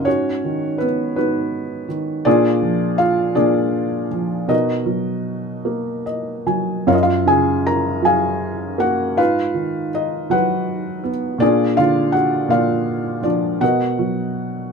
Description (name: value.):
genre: classical, lyrical solo piano.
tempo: 49-56 BPM (dotted quarters).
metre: 6/8.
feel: rubato.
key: unclear.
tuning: A4 = 440 Hz.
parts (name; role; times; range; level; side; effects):
felt-muted upright piano; solo; 0.0-14.7 s; F#2 to A#5; -17 LUFS; equal; none.
room: light reverb.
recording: close, detailed microphones.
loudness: -17 LUFS.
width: side -5 dB against mid.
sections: 0.0-14.7 A section.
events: felt piano fill 5.7-6.9.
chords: 0.1 G#m7; 2.3 A#7; 4.5 Bmaj7; 6.9 F#maj7; 9.2 G#m7; 11.4 A#7; 13.6 Bmaj7.